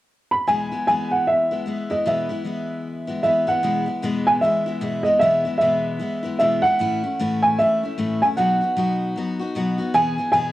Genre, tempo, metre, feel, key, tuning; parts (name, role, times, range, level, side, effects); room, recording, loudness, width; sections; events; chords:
country; 152 BPM; 4/4; swing 60% on 8ths; E major; A4 = 439 Hz
dark upright piano; melody; 0.3-10.5 s; D#5 to B5; -19 LUFS; right 1 dB; cassette tape, plate reverb
picked steel-string acoustic guitar; accompaniment; 0.5-10.5 s; E2 to G#4; -24 LUFS; left 2 dB; cassette tape
moderate booth ambience, RT60 0.2 s; home recording on cassette; -19 LUFS; side -15 dB against mid
0.5-3.6 A section; 3.6-10.5 B section
0.5 E; 6.8 A; 8.4 B; 9.9 E